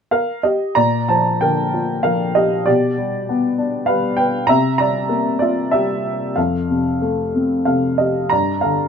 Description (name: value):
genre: classical, lyrical solo piano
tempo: 90-101 BPM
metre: 3/4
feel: rubato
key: Bb major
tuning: A4 = 441 Hz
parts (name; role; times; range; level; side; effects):
- warm upright piano; solo; 0.1-8.9 s; F2 to Bb5; -16 LUFS; equal; none
room: light reverb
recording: close, detailed microphones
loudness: -16 LUFS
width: side -7 dB against mid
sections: 0.8-8.9 A section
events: none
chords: 0.0 Gm7; 0.8 Bbadd9; 2.7 G/B; 4.5 C7; 6.4 Fadd9; 8.3 Gm7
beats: 0.13 | 0.77 1.42 2.05 | 2.67 3.28 3.88 | 4.48 5.09 5.73 | 6.37 7.02 7.67 | 8.32